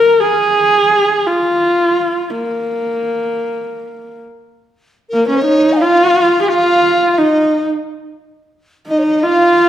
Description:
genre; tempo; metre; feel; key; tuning
mongolian traditional, Mongolian folk; 87 BPM; 4/4; straight; unclear; A4 = 438 Hz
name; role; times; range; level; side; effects
warm horsehead fiddle; melody; 0.0-9.7 s; Bb3 to Bb4; -12 LUFS; equal; none
mellow hollow large dizi; second line; 5.1-9.7 s; Bb4 to Ab5; -17 LUFS; equal; none
room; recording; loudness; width
wet recital hall reverb, RT60 1.3 s; none; -11 LUFS; side -11 dB against mid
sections
0.0-5.1 A section; 5.1-9.7 B section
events
none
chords
none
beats
0.25 0.95 1.64 | 2.34 3.03 3.72 4.41 | 5.11 5.80 6.49 7.18 | 7.87 8.56 9.25

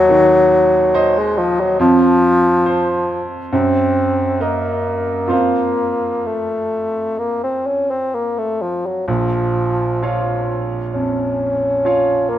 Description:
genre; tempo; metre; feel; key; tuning
classical, romantic duo for bassoon and grand piano; 63-71 BPM; 4/4; rubato; Bb minor; A4 = 443 Hz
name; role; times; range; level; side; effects
mellow bassoon; melody; 0.0-12.4 s; F3 to Db4; -16 LUFS; left 1 dB; none
bright grand piano; accompaniment; 0.0-12.4 s; Bb1 to F5; -19 LUFS; right 2 dB; none
room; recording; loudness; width
light reverb; close, detailed microphones; -14 LUFS; side -12 dB against mid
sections
0.0-12.4 A section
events
none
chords
0.0 Cdim/Eb; 1.8 F5; 3.5 Ebm/Gb; 5.3 F; 9.1 Bbm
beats
0.08 0.94 | 1.79 2.65 3.52 4.41 | 5.32 6.24 7.18 8.13 | 9.07 10.01 10.93 11.83

